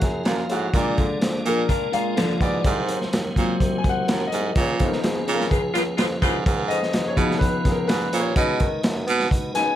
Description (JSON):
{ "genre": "uptempo 1960s-style soul", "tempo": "126 BPM", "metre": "4/4", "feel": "straight", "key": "unclear", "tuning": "A4 = 440 Hz", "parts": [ { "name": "clear upright piano", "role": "accompaniment", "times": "0.0-9.8 s", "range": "E#3 to G#5", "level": "-25 LUFS", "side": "left 4 dB", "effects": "none" }, { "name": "tonewheel organ", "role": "sustained chords", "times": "0.0-9.8 s", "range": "E#3 to B4", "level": "-31 LUFS", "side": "right 1 dB", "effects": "overdrive, chorus vibrato" }, { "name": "mellow bassoon", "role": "bass", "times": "0.0-9.7 s", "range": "B#1 to B3", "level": "-28 LUFS", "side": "equal", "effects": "none" }, { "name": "crunchy breakbeat drum kit", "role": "drums", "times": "0.0-9.7 s", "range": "hi-hat, kick drum, snare drum", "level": "-24 LUFS", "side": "equal", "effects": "none" }, { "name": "bright baritone saxophone", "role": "riff", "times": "0.3-9.3 s", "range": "F#2 to B2", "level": "-26 LUFS", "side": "right 4 dB", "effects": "none" }, { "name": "electric guitar at the edge of break-up", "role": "riff", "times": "1.7-2.6 s", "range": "E#3 to A#4", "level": "-27 LUFS", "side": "left 1 dB", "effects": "none" }, { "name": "warm saxophone section", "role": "second line", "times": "5.5-6.4 s", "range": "C#3 to E#4", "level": "-26 LUFS", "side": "left 1 dB", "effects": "none" } ], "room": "little or no reverb", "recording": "none", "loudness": "-19 LUFS", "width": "side -12 dB against mid", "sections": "0.0-9.8 A section", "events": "upright piano solo 0.0-9.8; band accent 4.6-6.5", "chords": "0.0 F#maj7; 0.7 A#7; 2.6 G#7/B#; 4.6 C#7; 8.4 B6" }